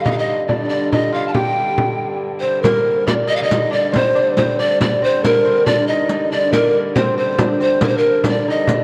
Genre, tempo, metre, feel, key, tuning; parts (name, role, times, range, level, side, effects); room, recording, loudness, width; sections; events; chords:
medieval dance; 92 BPM (dotted quarters); 6/8; straight; G minor; A4 = 441 Hz
breathy mellow pan flute; melody; 0.0-8.8 s; Bb4 to A5; -19 LUFS; equal; diffuse ambient delay
lute; second line; 0.0-8.8 s; Bb3 to G4; -24 LUFS; equal; diffuse ambient delay
dark hurdy-gurdy; drone; 0.0-8.8 s; G2 to D3; -29 LUFS; equal
frame drum; percussion; 0.1-8.8 s; -24 LUFS; equal
riq; percussion; 2.6-8.8 s; -27 LUFS; equal
wet plate reverb, RT60 2.4 s; dreamy mix soaked in reverb, cassette tape; -17 LUFS; mono
0.0-2.6 A section; 2.6-8.8 B section